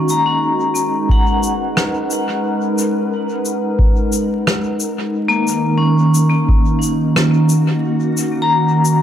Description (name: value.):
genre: ambient dub.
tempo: 89 BPM.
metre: 4/4.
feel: swing 59% on 16ths.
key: G# minor.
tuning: A4 = 440 Hz.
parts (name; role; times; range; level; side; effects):
soft additive organ-like pad; sustained chords; 0.0-9.0 s; D#3 to B4; -17 LUFS; right 1 dB; ensemble chorus, built-in reverb.
vibraphone with hard mallets; arpeggios; 0.0-9.0 s; A#3 to A#5; -19 LUFS; left 4 dB; tape echo.
shaker and rim click; drums; 0.1-9.0 s; none; -20 LUFS; left 1 dB; dub echo.
electronic kick drum; drums; 1.1-6.6 s; none; -14 LUFS; equal; none.
room: moderate spring reverb, RT60 1.7 s.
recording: vinyl crackle.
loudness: -14 LUFS.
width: side -10 dB against mid.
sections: 0.0-9.0 A section.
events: none.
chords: 0.0 G#m9; 5.1 D#m7.